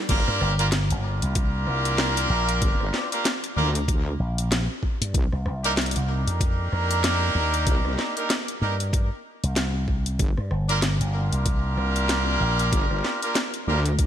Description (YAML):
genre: glitch hop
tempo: 95 BPM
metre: 4/4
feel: swing 58% on 16ths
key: unclear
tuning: A4 = 439 Hz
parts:
  - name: bright horn section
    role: stabs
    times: 0.1-13.8 s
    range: Bb3 to Bb4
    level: -26 LUFS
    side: right 1 dB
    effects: sidechain pumping, ping-pong delay
  - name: wobble bass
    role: bass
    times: 0.1-14.1 s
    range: G1 to D2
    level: -25 LUFS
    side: equal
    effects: chorus
  - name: drum and bass drum kit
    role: drums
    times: 0.1-14.1 s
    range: crash cymbal, hi-hat, rim click, snare drum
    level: -28 LUFS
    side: left 1 dB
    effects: none
  - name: electronic kick drum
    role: drums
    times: 0.1-14.1 s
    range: none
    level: -23 LUFS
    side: equal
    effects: overdrive
  - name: slap bass with an envelope filter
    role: bass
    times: 0.3-12.7 s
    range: G1 to G2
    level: -24 LUFS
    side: equal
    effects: none
room: light reverb, digital ambience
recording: bright 1980s-style digital production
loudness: -21 LUFS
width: side -10 dB against mid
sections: 0.1-14.1 A section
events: drop 0.1-14.1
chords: 0.1 Gm7; 5.1 Cm7; 10.2 Gm7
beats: | 0.09 0.72 1.36 1.99 | 2.62 3.25 3.88 4.51 | 5.14 5.78 6.41 7.04 | 7.67 8.30 8.93 9.57 | 10.20 10.83 11.46 12.09 | 12.72 13.36 13.99